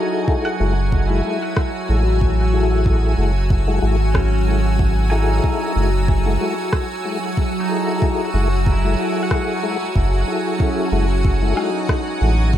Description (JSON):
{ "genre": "ambient dub", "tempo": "93 BPM", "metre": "4/4", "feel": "swing 55% on 16ths", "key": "F# dorian", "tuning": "A4 = 440 Hz", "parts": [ { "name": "soft additive organ-like pad", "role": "sustained chords", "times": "0.0-12.6 s", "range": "F#3 to E6", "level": "-23 LUFS", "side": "equal", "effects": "ensemble chorus, built-in reverb" }, { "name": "pedal steel guitar", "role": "arpeggios", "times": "0.0-12.6 s", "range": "C#4 to G#5", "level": "-28 LUFS", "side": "right 2 dB", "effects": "dub echo" }, { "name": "mellow tonewheel organ", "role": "stabs", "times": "0.0-12.4 s", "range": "G#3 to A4", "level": "-24 LUFS", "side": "left 3 dB", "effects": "chorus vibrato, slow rotary speaker, dub echo" }, { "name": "electronic kick drum", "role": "drums", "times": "0.3-12.6 s", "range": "none", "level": "-19 LUFS", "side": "equal", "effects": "none" }, { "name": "soft dub sub bass", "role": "bass", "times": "0.6-12.6 s", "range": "F#1 to A1", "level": "-17 LUFS", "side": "equal", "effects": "none" }, { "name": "electronic rim click and woodblock", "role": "drums", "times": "1.6-12.0 s", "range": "none", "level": "-26 LUFS", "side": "equal", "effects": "none" } ], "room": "light reverb", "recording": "none", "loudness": "-16 LUFS", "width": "side -11 dB against mid", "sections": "0.0-12.6 A section", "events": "none", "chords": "0.0 F#m9", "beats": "0.28 0.92 1.57 | 2.21 2.86 3.50 4.15 | 4.79 5.44 6.08 6.73 | 7.37 8.02 8.66 9.31 | 9.95 10.60 11.24 11.89 | 12.54" }